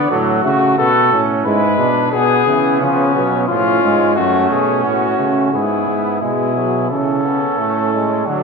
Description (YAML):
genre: classical, imitative canzona for brass ensemble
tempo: 88 BPM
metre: 4/4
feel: straight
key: unclear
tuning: A4 = 441 Hz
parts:
  - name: mellow trumpet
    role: melody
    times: 0.0-8.4 s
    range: C#4 to B4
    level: -17 LUFS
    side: left 5 dB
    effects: none
  - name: clear flugelhorn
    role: second line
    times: 0.0-8.4 s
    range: B3 to D5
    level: -20 LUFS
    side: right 6 dB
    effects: none
  - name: brilliant trombone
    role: accompaniment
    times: 0.0-8.4 s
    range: E3 to C#4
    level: -21 LUFS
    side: right 2 dB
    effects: none
  - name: mellow euphonium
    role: bass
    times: 0.0-8.4 s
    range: F#2 to D3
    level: -19 LUFS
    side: right 2 dB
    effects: none
room: wet scoring stage reverb, RT60 2.0 s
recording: recorded in a church or concert hall, nothing above 10.9 kHz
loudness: -13 LUFS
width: side -4 dB against mid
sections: 0.0-5.5 A section; 5.5-8.4 B section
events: none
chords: 0.1 F#m/A; 1.5 G#dim; 2.8 C#; 4.2 F#m; 5.5 E/G#; 6.9 A/C#